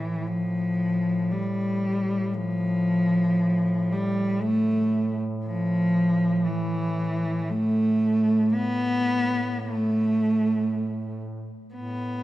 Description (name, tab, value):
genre	caucasian folk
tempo	free time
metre	none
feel	none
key	unclear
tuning	A4 = 440 Hz
part	rich cello	melody	0.0-12.2 s	E3 to B3	-23 LUFS	equal	none
part	breathy duduk	drone	0.0-12.2 s	A2	-33 LUFS	equal	none
room	moderate concert hall reverb, RT60 2.4 s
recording	dark, warm production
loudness	-22 LUFS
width	side -16 dB against mid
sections	0.0-12.2 A section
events	none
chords	none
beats	free time